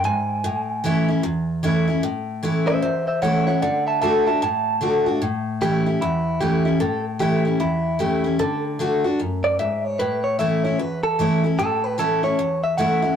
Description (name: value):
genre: rock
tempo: 151 BPM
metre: 4/4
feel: swing 62% on 8ths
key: A major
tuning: A4 = 440 Hz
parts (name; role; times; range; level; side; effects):
- direct-recorded clean electric guitar; melody; 0.0-13.2 s; E4 to A5; -22 LUFS; right 1 dB; spring reverb
- picked steel-string acoustic guitar; accompaniment; 0.0-13.2 s; E2 to F#4; -21 LUFS; left 1 dB; none
room: wet booth ambience, RT60 0.2 s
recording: rough rehearsal-room recording, warm saturation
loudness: -19 LUFS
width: side -8 dB against mid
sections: 0.0-2.0 A section; 2.0-13.2 B section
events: clean electric guitar solo 0.0-2.0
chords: 0.4 A; 3.6 D; 5.2 A; 8.4 D; 10.0 A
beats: 0.05 | 0.45 0.84 1.24 1.64 | 2.04 2.44 2.83 3.23 | 3.63 4.02 4.42 4.82 | 5.21 5.61 6.01 6.41 | 6.80 7.20 7.60 8.00 | 8.40 8.79 9.19 9.59 | 9.99 10.39 10.79 11.18 | 11.58 11.98 12.38 12.78